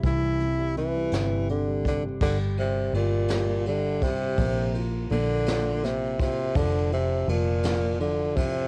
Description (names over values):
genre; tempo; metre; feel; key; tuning
six-eight pop ballad; 55 BPM (dotted quarters); 6/8; straight; unclear; A4 = 441 Hz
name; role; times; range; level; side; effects
dark concert grand piano; accompaniment; 0.0-8.7 s; C3 to F4; -36 LUFS; equal; none
vintage muted fingered electric bass; bass; 0.0-8.7 s; F1 to C2; -31 LUFS; equal; none
jazz brush drum kit; drums; 0.0-8.5 s; crash cymbal, hi-hat, kick drum, ride cymbal, snare drum; -34 LUFS; equal; cassette tape
warm tenor saxophone; melody; 0.1-8.7 s; Bb2 to E4; -29 LUFS; equal; cassette tape
room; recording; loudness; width
small room ambience; home recording on cassette; -26 LUFS; mono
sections
0.0-2.2 A section; 2.2-8.7 B section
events
none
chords
0.0 C; 2.2 Gm; 4.4 Bb; 6.6 Bbadd9/F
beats
| 0.04 1.12 | 2.21 3.30 | 4.38 5.47 | 6.56 7.64